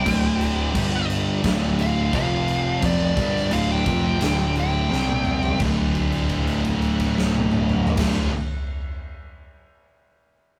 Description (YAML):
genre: stoner and doom metal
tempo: 86 BPM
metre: 4/4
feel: straight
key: D minor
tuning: A4 = 440 Hz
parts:
  - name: fuzz lead guitar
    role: melody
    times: 0.0-5.6 s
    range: D5 to G5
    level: -29 LUFS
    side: equal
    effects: distortion
  - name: thick fuzz guitar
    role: riff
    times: 0.0-8.3 s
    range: D2 to C4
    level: -27 LUFS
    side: equal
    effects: distortion
  - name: thick fuzz guitar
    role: riff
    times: 0.0-8.3 s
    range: D2 to C4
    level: -29 LUFS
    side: equal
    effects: distortion
  - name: tight distorted guitar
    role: riff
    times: 0.0-8.3 s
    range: D2 to F4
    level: -33 LUFS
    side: equal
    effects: distortion
  - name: growling picked electric bass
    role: bass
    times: 0.0-8.3 s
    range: D1 to C2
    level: -30 LUFS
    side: equal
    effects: overdrive
  - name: big rock drum kit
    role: drums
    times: 0.1-8.1 s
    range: crash cymbal, kick drum, snare drum, toms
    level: -28 LUFS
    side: equal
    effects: none
room: light reverb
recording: rough rehearsal-room recording, tube saturation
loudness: -22 LUFS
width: mono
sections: 0.0-5.6 A section; 5.6-8.4 B section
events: lead electric guitar solo 0.0-5.6; drum fill 4.9-5.6; held note 5.6-8.0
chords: 0.1 D5; 0.8 G5; 1.4 Dm; 2.1 F5; 2.8 Dm; 4.9 C5; 5.6 Dm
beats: | 0.06 0.75 1.44 2.13 | 2.82 3.51 4.20 4.90 | 5.60 6.30 7.00 7.70